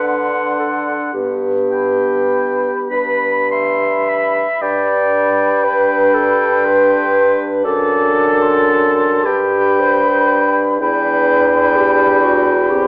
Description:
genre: classical, slow romantic movement for wind quintet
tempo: 33-43 BPM (dotted quarters)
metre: 6/8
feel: rubato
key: G major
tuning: A4 = 440 Hz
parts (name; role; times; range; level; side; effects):
- mellow hollow concert flute; melody; 0.0-12.9 s; B5 to D6; -20 LUFS; left 1 dB; none
- clear oboe; second line; 0.0-12.9 s; F#5 to C6; -19 LUFS; equal; none
- mellow clarinet; accompaniment; 0.0-12.9 s; F#4 to E5; -17 LUFS; equal; none
- warm French horn; accompaniment; 0.0-12.9 s; B3 to D4; -24 LUFS; equal; none
- mellow bassoon; bass; 0.0-12.9 s; E2 to D3; -17 LUFS; equal; none
room: wet recital hall reverb, RT60 1.8 s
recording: worn, warbling old tape, cassette tape, warbly pitch drift, AM radio sound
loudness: -12 LUFS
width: side -32 dB against mid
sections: 0.0-4.6 A section; 4.6-12.9 B section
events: none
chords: 0.0 D7; 1.2 G; 7.7 D/F#; 9.3 G; 10.8 Em7

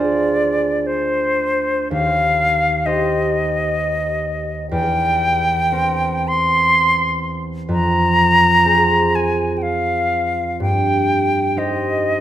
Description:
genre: classical, romantic duo for flute and harp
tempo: 53-66 BPM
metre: 3/4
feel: rubato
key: C minor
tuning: A4 = 440 Hz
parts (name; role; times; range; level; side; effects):
- bright concert flute; melody; 0.0-12.2 s; C5 to C6; -16 LUFS; equal; none
- concert harp; accompaniment; 0.0-12.2 s; D2 to C5; -20 LUFS; right 1 dB; none
room: moderate recital hall reverb, RT60 1.5 s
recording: none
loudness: -15 LUFS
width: side -11 dB against mid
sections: 0.0-12.2 A section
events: none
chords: 0.0 Dm7b5; 1.9 Cm/Eb; 4.7 C7/E; 7.7 Fm; 10.6 Cm/G

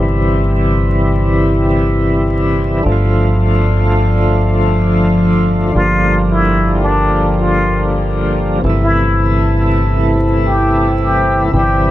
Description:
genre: trip hop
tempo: 83 BPM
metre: 4/4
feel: straight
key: unclear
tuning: A4 = 441 Hz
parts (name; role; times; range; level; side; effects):
- overdriven tonewheel organ; accompaniment; 0.0-11.9 s; C3 to F4; -16 LUFS; equal; slow rotary speaker, tremolo, low-pass filter, tape echo
- dark analog pad; sustained chords; 0.0-11.9 s; F3 to E6; -20 LUFS; equal; chorus
- deep dub fingered electric bass; bass; 0.0-11.9 s; G1; -15 LUFS; equal; none
- trumpet with plunger mute; melody; 5.8-11.9 s; D4 to G4; -17 LUFS; left 1 dB; tape echo
room: light reverb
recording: vinyl crackle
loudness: -11 LUFS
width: side -14 dB against mid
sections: 0.0-11.9 A section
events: none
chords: 0.0 C/G; 2.9 Dm/G; 5.8 Gm7; 8.6 Am/G

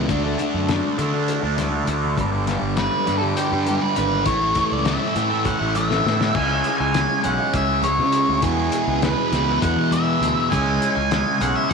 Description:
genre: psychedelic rock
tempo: 201 BPM (eighths)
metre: 7/8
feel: straight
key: unclear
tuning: A4 = 436 Hz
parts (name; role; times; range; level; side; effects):
- percussive tonewheel organ; sustained chords; 0.0-11.7 s; G#3 to D5; -32 LUFS; right 10 dB; slow rotary speaker, overdrive
- thick fuzz guitar; riff; 0.0-11.7 s; E2 to D4; -22 LUFS; equal; distortion, phaser
- fuzz fingered electric bass; bass; 0.0-11.7 s; G1 to E3; -25 LUFS; equal; overdrive
- cloth-damped thuddy drum kit; drums; 0.1-11.7 s; crash cymbal, hi-hat, kick drum, snare drum; -27 LUFS; left 5 dB; none
- congas; percussion; 0.1-11.5 s; none; -35 LUFS; left 11 dB; none
- octave-fuzz lead guitar; melody; 2.8-11.7 s; G4 to G#5; -22 LUFS; equal; distortion, slapback echo
room: light reverb, small room reverb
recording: 1960s-style stereo with parts hard left and right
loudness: -18 LUFS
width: side -5 dB against mid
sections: 0.0-6.3 A section; 6.3-11.7 B section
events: drum fill 5.9-6.3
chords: 0.1 D; 2.2 G; 4.3 A; 6.3 C#m; 8.4 E; 10.5 C#m

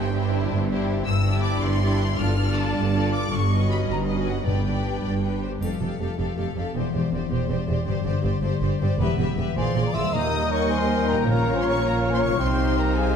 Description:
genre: cinematic, heroic adventure film score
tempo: 106 BPM (dotted quarters)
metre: 6/8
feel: straight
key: G mixolydian, Eb mixolydian from 10.1 s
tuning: A4 = 440 Hz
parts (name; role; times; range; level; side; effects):
- warm symphonic violin section; melody; 0.0-13.2 s; D5 to F6; -33 LUFS; left 4 dB; none
- warm symphonic violin section; second line; 0.0-13.2 s; G4 to D#5; -31 LUFS; left 5 dB; none
- warm studio viola section; accompaniment; 0.0-13.2 s; G3 to Ab4; -31 LUFS; right 2 dB; none
- concert harp; arpeggios; 0.0-13.2 s; E2 to D#5; -28 LUFS; left 7 dB; none
- clear symphonic cello section; bass; 0.0-13.2 s; Eb2 to C3; -27 LUFS; right 3 dB; none
- rich symphonic double bass section; bass; 0.0-13.2 s; E1 to Eb2; -27 LUFS; right 4 dB; none
- timpani; percussion; 4.5-5.0, 7.9-11.8 s; G2 to Eb3; -32 LUFS; equal; none
- triangle; percussion; 5.6-6.3 s; none; -47 LUFS; left 3 dB; none
- mellow hollow concert flute; second line; 9.6-13.2 s; F5 to C6; -32 LUFS; left 1 dB; none
- dark trumpet; stabs; 9.6-13.2 s; Ab4 to E5; -28 LUFS; right 2 dB; none
- dark clarinet; second line; 10.1-13.2 s; Bb4 to Db5; -33 LUFS; right 1 dB; none
- mellow French horn section; sustained chords; 10.1-13.2 s; G3 to F4; -30 LUFS; left 6 dB; none
- warm oboe; second line; 10.2-13.2 s; F5 to G5; -32 LUFS; equal; none
room: wet scoring stage reverb, RT60 1.7 s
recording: none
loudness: -21 LUFS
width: side -7 dB against mid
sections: 0.0-5.6 A section; 5.6-10.1 B section; 10.1-13.2 C section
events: none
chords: 0.0 Cadd9/G; 2.2 Dm/G; 3.3 Badd9/G; 4.5 G; 5.6 Fadd9; 6.7 Cadd9/E; 7.9 Gsus4; 9.0 Em; 9.6 Bb7; 10.1 Eb; 11.3 Bbm; 12.4 Cm

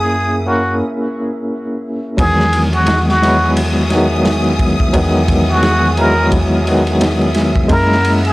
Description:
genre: trip hop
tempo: 87 BPM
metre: 4/4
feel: swing 58% on 16ths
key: unclear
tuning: A4 = 442 Hz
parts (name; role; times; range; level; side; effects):
- trumpet with plunger mute; melody; 0.0-8.3 s; F#4 to A#4; -17 LUFS; equal; vintage 12-bit sampler grit
- tine electric piano; accompaniment; 0.0-8.3 s; D#3 to A#4; -16 LUFS; equal; tremolo
- warm symphonic string section; sustained chords; 0.0-8.3 s; G#4 to E6; -25 LUFS; equal; none
- deep dub fingered electric bass; bass; 0.0-8.3 s; E2 to F#2; -18 LUFS; equal; none
- wind-like tuned noise texture; texture; 0.0-8.3 s; E5; -30 LUFS; right 5 dB; built-in reverb
- crunchy breakbeat drum kit; drums; 2.2-8.3 s; kick drum, ride cymbal, snare drum; -18 LUFS; equal; vintage 12-bit sampler grit
room: small room ambience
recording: dry, gritty hardware recording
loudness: -12 LUFS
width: side -20 dB against mid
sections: 0.0-2.2 A section; 2.2-8.3 B section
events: break 0.8-2.2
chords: 0.0 F#7; 2.2 Emaj7; 7.7 F#7

